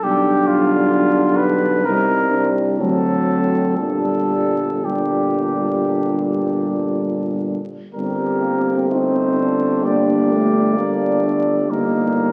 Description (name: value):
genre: classical, hymn-like piece for brass band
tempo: 56-67 BPM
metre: 4/4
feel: rubato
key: G minor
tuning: A4 = 440 Hz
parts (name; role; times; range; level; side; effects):
- warm flugelhorn; melody; 0.0-12.3 s; F4 to D5; -25 LUFS; equal; none
- dark French horn section; second line; 0.0-12.3 s; C4 to G4; -24 LUFS; equal; none
- mellow euphonium; accompaniment; 0.0-12.3 s; F#3 to C4; -24 LUFS; equal; none
- warm trombone; accompaniment; 0.0-12.3 s; A2 to Bb3; -28 LUFS; equal; none
- mellow tuba; bass; 0.0-12.3 s; G1 to D2; -26 LUFS; equal; none
room: wet scoring stage reverb, RT60 1.6 s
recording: very old 78 rpm record, vinyl crackle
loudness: -18 LUFS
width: mono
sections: 0.0-8.0 A section; 8.0-12.3 B section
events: none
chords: 0.0 G7/B; 1.9 Cm; 2.8 D7; 3.8 Gm; 11.7 Eb/G